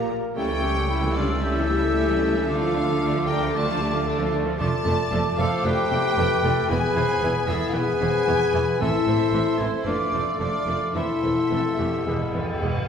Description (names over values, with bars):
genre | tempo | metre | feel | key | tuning
classical | 114 BPM | 4/4 | straight | D minor, A minor from 4.6 s | A4 = 440 Hz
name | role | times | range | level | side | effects
clear symphonic violin section | melody | 0.0-12.6 s | C5 to A5 | -30 LUFS | left 3 dB | none
rich symphonic violin section | second line | 0.0-12.7 s | A3 to F4 | -33 LUFS | left 1 dB | none
silver concert flute | second line | 0.0-12.9 s | B5 to E6 | -31 LUFS | equal | none
warm clarinet | second line | 0.0-12.7 s | E4 to C5 | -32 LUFS | right 1 dB | none
warm oboe | second line | 0.0-12.6 s | E4 to D5 | -32 LUFS | right 2 dB | none
mellow bassoon | accompaniment | 0.0-12.9 s | G#3 to B3 | -31 LUFS | right 4 dB | none
rich symphonic viola section | accompaniment | 0.0-12.7 s | D3 to A3 | -31 LUFS | right 1 dB | none
mellow French horn section | sustained chords | 0.0-12.6 s | C4 to A4 | -27 LUFS | left 6 dB | none
rich symphonic double bass section | bass | 0.0-12.7 s | E1 to D2 | -30 LUFS | right 2 dB | none
warm symphonic cello section | bass | 0.0-12.7 s | E2 to D3 | -30 LUFS | right 2 dB | none
timpani | percussion | 12.1-12.9 s | E2 | -30 LUFS | right 1 dB | none
room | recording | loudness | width
wet recital hall reverb, RT60 1.5 s | heard from further back in the room | -20 LUFS | side -7 dB against mid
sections
0.0-12.9 A section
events
timpani fill 12.1-12.9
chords
0.4 A7/C#; 2.5 Dm; 4.6 Dm/F; 6.7 E; 8.8 Am; 9.9 Dm/F; 10.9 Am/E; 12.1 E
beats
| 0.36 0.90 1.43 1.95 | 2.48 3.01 3.54 4.06 | 4.59 5.12 5.65 6.17 | 6.70 7.22 7.75 8.28 | 8.81 9.33 9.86 10.40 | 10.95 11.51 12.06 12.61